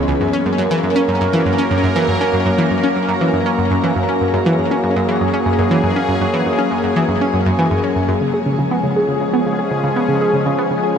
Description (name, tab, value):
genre	ambient, sequencer-driven space music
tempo	120 BPM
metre	4/4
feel	straight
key	unclear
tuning	A4 = 442 Hz
part	sweeping resonant pad	sustained chords	0.0-11.0 s	E3 to A#4	-17 LUFS	equal	chorus
part	analog pluck	riff	0.0-11.0 s	C#2 to G#4	-17 LUFS	equal	chorus, ping-pong delay
room	wet shimmer reverb, RT60 7.8 s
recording	lossy compression artefacts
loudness	-14 LUFS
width	side -7 dB against mid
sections	0.0-8.2 A section; 8.2-11.0 B section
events	none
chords	0.2 F#; 8.2 C#